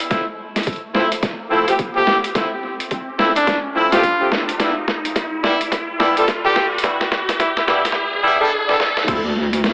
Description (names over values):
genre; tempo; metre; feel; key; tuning
glitch hop; 107 BPM; 4/4; swing 61% on 16ths; unclear; A4 = 440 Hz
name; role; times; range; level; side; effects
boom bap sampler-style drum kit; drums; 0.0-9.7 s; crash cymbal, hi-hat, snare drum; -25 LUFS; equal; overdrive, studio reverb, analog delay
riser, swell and sub drop; sound effects; 0.0-9.7 s; none; -28 LUFS; equal; none
bright horn section; stabs; 0.1-9.2 s; F3 to A4; -22 LUFS; equal; vintage 12-bit sampler grit, sidechain pumping, analog delay
electronic kick drum; drums; 0.1-9.2 s; none; -28 LUFS; equal; overdrive, studio reverb
clear trumpet; melody; 2.0-7.6 s; D4 to G4; -23 LUFS; equal; analog delay
wobble bass; bass; 9.1-9.7 s; D2; -23 LUFS; equal; chorus, tube saturation
room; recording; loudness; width
wet plate reverb, RT60 2.6 s; echo-heavy mix, vinyl crackle, high-pass filter, AM radio sound; -18 LUFS; mono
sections
0.0-9.1 A section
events
build-up 0.0-9.1; riser 0.0-9.1; drum fill 0.1-8.0, 8.7-9.1; swell 8.0-9.1; impact 9.1-9.7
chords
0.1 Fmaj7; 4.6 G6; 9.1 Dm9